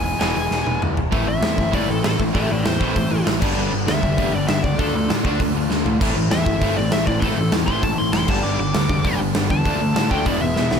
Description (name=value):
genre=punk rock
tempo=197 BPM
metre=4/4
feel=straight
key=A minor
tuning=A4 = 439 Hz
part: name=high-gain lead guitar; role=melody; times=0.0-10.8 s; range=G4 to D6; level=-25 LUFS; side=left 3 dB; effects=distortion
part: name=fuzz guitar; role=riff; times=0.0-10.8 s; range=G2 to F4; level=-26 LUFS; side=equal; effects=distortion
part: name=growling picked electric bass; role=bass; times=0.0-10.8 s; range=E1 to A2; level=-26 LUFS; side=right 1 dB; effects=overdrive
part: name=big rock drum kit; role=drums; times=0.1-10.8 s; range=crash cymbal, hi-hat, kick drum, snare drum, splash cymbal, toms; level=-22 LUFS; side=right 1 dB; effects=none
part: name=crunchy overdriven guitar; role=riff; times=0.2-10.8 s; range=E2 to D4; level=-26 LUFS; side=right 14 dB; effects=none
part: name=distorted electric guitar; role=riff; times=0.2-10.8 s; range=E2 to D4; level=-24 LUFS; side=left 11 dB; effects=distortion
room=little or no reverb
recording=none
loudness=-17 LUFS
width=side -7 dB against mid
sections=0.0-1.1 A section; 1.1-10.8 B section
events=drum fill 0.5-1.1, 5.7-6.0, 10.6; lead electric guitar solo 1.1-10.8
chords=0.0 E; 1.1 Am; 3.4 G; 4.8 Dm; 6.0 Am; 8.3 G; 9.7 Dm; 10.3 E